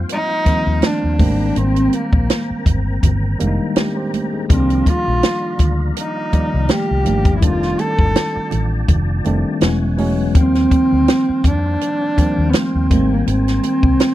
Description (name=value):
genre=lush 1970s-style soul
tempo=82 BPM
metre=4/4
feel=swing 54% on 16ths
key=unclear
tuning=A4 = 443 Hz
part: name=tine electric piano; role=accompaniment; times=0.0-14.1 s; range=D3 to D5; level=-21 LUFS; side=left 1 dB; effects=auto-pan
part: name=percussive tonewheel organ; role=sustained chords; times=0.0-14.1 s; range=Eb3 to Bb5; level=-31 LUFS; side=equal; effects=fast rotary speaker, chorus vibrato
part: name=vintage muted fingered electric bass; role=bass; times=0.0-14.0 s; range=E1 to F2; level=-19 LUFS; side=equal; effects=none
part: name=dark cello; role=melody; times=0.1-14.1 s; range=Bb3 to A4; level=-19 LUFS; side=right 1 dB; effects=none
part: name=compact cocktail drum kit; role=drums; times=0.1-14.1 s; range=hi-hat, kick drum, snare drum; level=-16 LUFS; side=equal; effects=none
part: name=congas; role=percussion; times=0.8-14.1 s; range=none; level=-27 LUFS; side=right 6 dB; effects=none
room=small room ambience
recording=dry, close 1970s-style studio recording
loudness=-14 LUFS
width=side -14 dB against mid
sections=0.0-14.1 A section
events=none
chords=0.0 Eb69; 1.2 Abmaj9; 4.5 Cm11; 7.4 F13; 9.6 E69; 10.3 Eb69; 12.9 Abmaj9